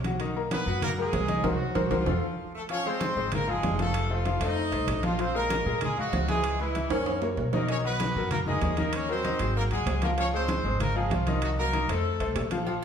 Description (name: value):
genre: latin, salsa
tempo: 192 BPM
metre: 4/4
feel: straight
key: unclear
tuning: A4 = 440 Hz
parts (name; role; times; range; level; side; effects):
- upright bass; bass; 0.0-12.8 s; F1 to Bb2; -31 LUFS; equal; none
- congas; percussion; 0.0-12.8 s; none; -33 LUFS; equal; none
- timbales and agogo bells; percussion; 0.0-12.8 s; none; -36 LUFS; right 4 dB; none
- bright concert grand piano; accompaniment; 0.1-12.8 s; D#3 to D#6; -31 LUFS; left 3 dB; none
- bright horn section; melody; 0.5-12.5 s; Fb3 to Eb5; -30 LUFS; equal; none
room: wet large studio reverb, RT60 1.2 s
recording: band playing live in one room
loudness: -25 LUFS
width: side -8 dB against mid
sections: 0.0-2.7 A section; 2.7-12.7 B section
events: band accent 1.4-2.7; drum fill 6.9-7.7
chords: 0.2 Bmaj7; 1.4 Gbmaj7#11/C; 2.1 F; 2.7 Dbmaj7; 3.9 F7; 5.2 Bbm7; 6.4 Dbm7; 7.1 Gb; 7.7 Bmaj7; 8.9 Ebm7; 9.6 Ab7; 10.2 Dbmaj7; 11.4 Cm7b5; 12.0 F